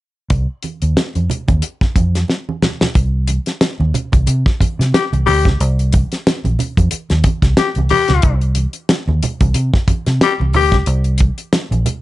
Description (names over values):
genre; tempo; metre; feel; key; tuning
funk; 91 BPM; 4/4; swing 56% on 16ths; C minor; A4 = 440 Hz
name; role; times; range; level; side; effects
vintage muted fingered electric bass; bass; 0.3-11.8 s; Bb1 to C3; -15 LUFS; equal; none
damped 70s drum kit; drums; 0.3-12.0 s; hi-hat, kick drum, snare drum; -16 LUFS; equal; none
congas; percussion; 0.3-12.0 s; none; -23 LUFS; right 4 dB; none
growling tenor saxophone; second line; 4.9-10.8 s; G4; -16 LUFS; left 8 dB; slapback echo, plate reverb
room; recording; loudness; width
light reverb; nothing above 11.0 kHz; -13 LUFS; side -16 dB against mid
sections
0.3-3.0 A section; 3.0-12.0 B section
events
drum fill 2.3-3.0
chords
0.3 Cm; 3.0 N.C.